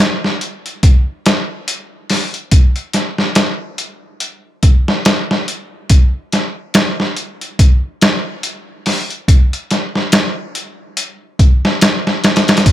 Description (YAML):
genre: trip hop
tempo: 71 BPM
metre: 4/4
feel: swing 58% on 16ths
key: none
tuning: none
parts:
  - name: trip hop sampler-style drum kit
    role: drums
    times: 0.2-12.7 s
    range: hi-hat, kick drum, snare drum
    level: -11 LUFS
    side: equal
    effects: none
room: little or no reverb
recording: none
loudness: -12 LUFS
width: side -13 dB against mid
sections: 0.0-12.7 A section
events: none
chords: none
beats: 0.83 1.68 | 2.52 3.37 4.21 5.06 | 5.90 6.75 7.59 8.44 | 9.28 10.13 10.97 11.82 | 12.66